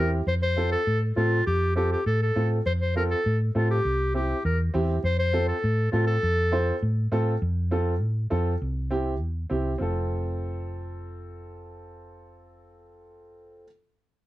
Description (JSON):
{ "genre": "latin, cumbia", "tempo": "202 BPM", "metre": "4/4", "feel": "straight", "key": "F major", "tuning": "A4 = 440 Hz", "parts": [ { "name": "clear clarinet", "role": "melody", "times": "0.0-6.9 s", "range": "F4 to C5", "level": "-26 LUFS", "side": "left 1 dB", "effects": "plate reverb" }, { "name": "dark upright piano", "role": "accompaniment", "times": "0.0-13.7 s", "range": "C4 to C5", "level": "-30 LUFS", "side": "right 1 dB", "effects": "none" }, { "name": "hollow-body short-scale fingered electric bass", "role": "bass", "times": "0.0-13.6 s", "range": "F1 to A2", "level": "-26 LUFS", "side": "equal", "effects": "none" } ], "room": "light reverb", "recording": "dark, warm production", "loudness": "-23 LUFS", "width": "side -16 dB against mid", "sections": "0.0-7.4 A section; 7.4-9.8 B section; 9.8-12.2 C section", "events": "none", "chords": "0.3 F; 3.8 C; 5.0 F; 8.6 C; 9.8 F" }